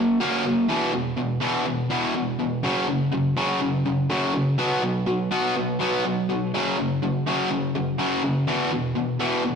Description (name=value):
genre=rock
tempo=123 BPM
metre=4/4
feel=straight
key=F# mixolydian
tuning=A4 = 439 Hz
part: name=distorted electric guitar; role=solo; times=0.0-9.6 s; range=E2 to C#4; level=-21 LUFS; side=equal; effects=overdrive
room=wet stone room reverb, RT60 1.3 s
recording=rough rehearsal-room recording, tube saturation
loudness=-21 LUFS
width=side -6 dB against mid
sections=0.0-9.6 A section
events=none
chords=0.0 F#; 0.7 E5; 2.6 F#5; 4.6 B5; 6.5 F#5; 8.5 E5